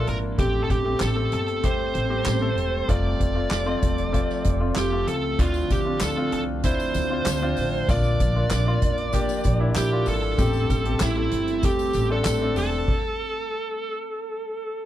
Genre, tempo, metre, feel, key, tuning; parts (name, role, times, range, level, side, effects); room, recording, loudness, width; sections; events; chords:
piano-driven pop; 96 BPM; 4/4; straight; A4 = 439 Hz
smooth overdriven lead guitar; melody; 0.0-14.9 s; E4 to D5; -27 LUFS; right 2 dB
clear concert grand piano; accompaniment; 0.0-12.9 s; A2 to A4; -28 LUFS; left 3 dB
glassy FM pad; sustained chords; 0.0-12.9 s; D3 to D4; -33 LUFS; right 1 dB; ensemble chorus, built-in reverb
upright bass; bass; 0.1-12.8 s; E1 to D2; -26 LUFS; equal
soft-mallet drum kit; drums; 0.1-13.0 s; crash cymbal, handclaps, hi-hat, kick drum, snare drum; -26 LUFS; equal
tambourine; percussion; 5.4-12.7 s; -40 LUFS; left 23 dB
little or no reverb; dry, close 1970s-style studio recording; -21 LUFS; side -12 dB against mid
0.0-14.9 A section
stop 12.9-14.9
0.4 Am7; 2.9 F; 5.4 Dm7; 7.9 Bb; 10.4 Am7; 12.9 N.C.